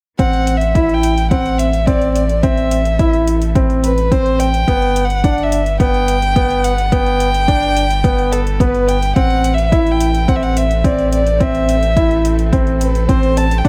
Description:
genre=piano and strings electronica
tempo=107 BPM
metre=4/4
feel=straight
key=A dorian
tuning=A4 = 440 Hz
part: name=dark violin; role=melody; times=0.2-13.7 s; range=A4 to A5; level=-21 LUFS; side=equal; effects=none
part: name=clear studio string section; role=sustained chords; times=0.2-13.7 s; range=D3 to B4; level=-37 LUFS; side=equal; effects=none
part: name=warm upright piano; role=riff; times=0.2-13.7 s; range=B3 to E4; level=-20 LUFS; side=equal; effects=digital delay
part: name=round analog bass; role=bass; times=0.2-13.7 s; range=G1 to D2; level=-20 LUFS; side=equal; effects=sidechain pumping
part: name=electronic hi-hat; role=drums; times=0.2-13.7 s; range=none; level=-34 LUFS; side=equal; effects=overdrive
part: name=electronic kick drum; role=drums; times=0.2-13.7 s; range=none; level=-18 LUFS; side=equal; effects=overdrive
room=light reverb, studio reverb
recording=none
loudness=-15 LUFS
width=mono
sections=0.2-13.7 A section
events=none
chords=0.2 Amadd9; 4.7 G; 9.2 Amadd9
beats=| 0.19 0.75 1.31 1.88 | 2.44 3.00 3.56 4.12 | 4.68 5.24 5.80 6.36 | 6.92 7.48 8.04 8.60 | 9.16 9.73 10.29 10.85 | 11.41 11.97 12.53 13.09 | 13.65

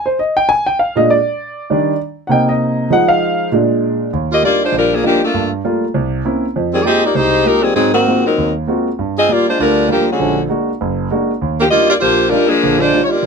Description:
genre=jazz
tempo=198 BPM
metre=4/4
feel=swing 60% on 8ths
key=Eb major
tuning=A4 = 440 Hz
part: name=warm concert grand piano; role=accompaniment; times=0.0-13.3 s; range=F#1 to Ab5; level=-15 LUFS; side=right 1 dB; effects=none
part: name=warm saxophone section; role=melody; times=4.3-13.3 s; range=D3 to Eb5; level=-12 LUFS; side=left 1 dB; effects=none
room=light reverb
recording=dark, warm production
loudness=-12 LUFS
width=side -5 dB against mid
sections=0.0-4.1 A section; 4.1-13.3 B section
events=grand piano solo 0.0-4.1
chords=0.5 Bb7; 1.7 Ebmaj7; 2.3 Cm7; 2.9 Fm7; 3.5 Bb7; 4.1 Ebmaj9; 5.3 Gm9; 5.9 C7b9; 6.5 Fm11; 7.8 Ab13; 9.0 Gm7; 10.2 Bb7b13; 11.4 Ebmaj9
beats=0.18 | 0.48 0.78 1.09 1.39 | 1.69 2.00 2.30 2.60 | 2.91 3.21 3.51 3.82 | 4.12 4.42 4.73 5.03 | 5.33 5.64 5.94 6.24 | 6.55 6.85 7.16 7.46 | 7.76 8.07 8.37 8.67 | 8.98 9.28 9.58 9.89 | 10.19 10.49 10.80 11.10 | 11.41 11.71 12.01 12.32 | 12.62 12.92 13.23

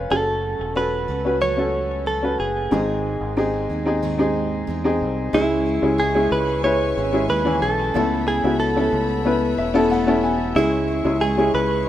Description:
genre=piano-driven pop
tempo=92 BPM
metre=4/4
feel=straight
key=C# minor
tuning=A4 = 437 Hz
part: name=warm upright piano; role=accompaniment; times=0.0-11.9 s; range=G#2 to G#5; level=-21 LUFS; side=left 2 dB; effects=none
part: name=warm studio string section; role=sustained chords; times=0.0-11.9 s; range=G#3 to C#6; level=-36 LUFS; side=left 2 dB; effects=none
part: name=fingered electric bass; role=bass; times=0.0-11.9 s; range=E1 to E2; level=-27 LUFS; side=right 1 dB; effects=none
part: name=direct-recorded clean electric guitar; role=melody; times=0.1-11.9 s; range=E4 to C#5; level=-23 LUFS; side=right 1 dB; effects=none
part: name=picked steel-string acoustic guitar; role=riff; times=0.1-11.9 s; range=G#2 to A4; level=-32 LUFS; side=right 9 dB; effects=none
room=little or no reverb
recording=rough home demo mix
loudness=-18 LUFS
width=side -12 dB against mid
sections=0.0-5.3 A section; 5.3-11.9 B section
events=upright piano fill 9.3-10.6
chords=0.1 F#m; 2.7 G#; 5.3 C#m; 7.9 Aadd9/C#; 10.6 C#m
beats=| 0.11 0.76 1.42 2.07 | 2.72 3.38 4.03 4.68 | 5.33 5.99 6.64 7.29 | 7.95 8.60 9.26 9.91 | 10.56 11.22 11.87

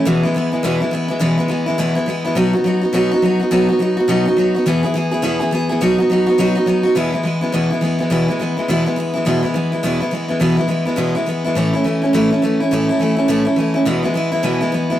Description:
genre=rock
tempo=209 BPM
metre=4/4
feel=swing 61% on 8ths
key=E major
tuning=A4 = 439 Hz
part: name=picked steel-string acoustic guitar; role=solo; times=0.0-15.0 s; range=E2 to G#4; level=-15 LUFS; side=equal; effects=none
room=moderate studio reverb, RT60 0.5 s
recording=rough rehearsal-room recording, warm saturation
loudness=-15 LUFS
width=side -12 dB against mid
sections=0.0-7.0 A section; 7.0-15.0 B section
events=none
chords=0.1 E; 2.4 B; 4.7 E; 5.8 B; 7.0 E; 11.6 A; 13.9 E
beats=| 0.06 0.35 0.64 0.93 | 1.21 1.50 1.79 2.08 | 2.36 2.65 2.94 3.23 | 3.51 3.80 4.09 4.38 | 4.66 4.95 5.24 5.52 | 5.81 6.10 6.38 6.67 | 6.96 7.25 7.54 7.82 | 8.11 8.40 8.68 8.97 | 9.26 9.55 9.83 10.12 | 10.41 10.70 10.98 11.27 | 11.56 11.85 12.13 12.42 | 12.71 13.00 13.29 13.58 | 13.86 14.15 14.44 14.73

